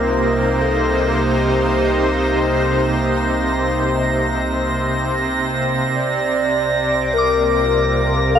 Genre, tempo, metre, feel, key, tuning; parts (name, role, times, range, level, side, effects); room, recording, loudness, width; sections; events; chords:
ambient; 51 BPM; 4/4; straight; C minor; A4 = 440 Hz
mellow hollow alto flute; melody; 0.0-8.4 s; G4 to D5; -21 LUFS; left 2 dB; tape echo
warm analog pad; sustained chords; 0.0-8.4 s; C3 to D6; -18 LUFS; right 1 dB; chorus, tremolo
soft synth bell; arpeggios; 0.0-8.4 s; F5 to Eb6; -24 LUFS; equal; chorus, tape echo
warm sub bass; bass; 0.0-8.4 s; C2; -26 LUFS; equal
drifting glass-harmonics texture; texture; 0.0-8.4 s; Bb6; -25 LUFS; right 3 dB; chorus, built-in reverb
wet huge ambient reverb, RT60 7.8 s; -15 LUFS; side -8 dB against mid
0.0-8.4 A section
0.0 Cm7; 5.9 Bbadd9/C